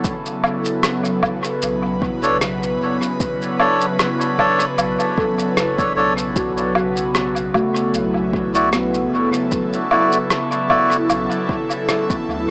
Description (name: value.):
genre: ambient dub.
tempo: 76 BPM.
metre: 4/4.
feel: swing 54% on 16ths.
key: B minor.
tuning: A4 = 441 Hz.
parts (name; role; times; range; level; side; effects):
airy breathy pad; sustained chords; 0.0-12.5 s; C#3 to B4; -21 LUFS; equal; chorus, phaser.
handpan; arpeggios; 0.0-12.0 s; A3 to A4; -24 LUFS; equal; dub echo.
electronic kick drum; drums; 0.0-12.2 s; none; -26 LUFS; equal; overdrive, studio ambience.
electronic shaker, woodblock and rim click; drums; 0.0-12.2 s; none; -23 LUFS; equal; studio ambience, dub echo.
warm sub bass; bass; 1.6-12.5 s; F#1 to D2; -30 LUFS; equal; none.
melodica; stabs; 2.2-11.0 s; D4 to D5; -20 LUFS; equal; dub echo.
room: light reverb, digital ambience.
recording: echo-heavy mix, small speaker sound.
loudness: -16 LUFS.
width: side -32 dB against mid.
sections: 0.0-12.5 A section.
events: none.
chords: 0.0 Bm9.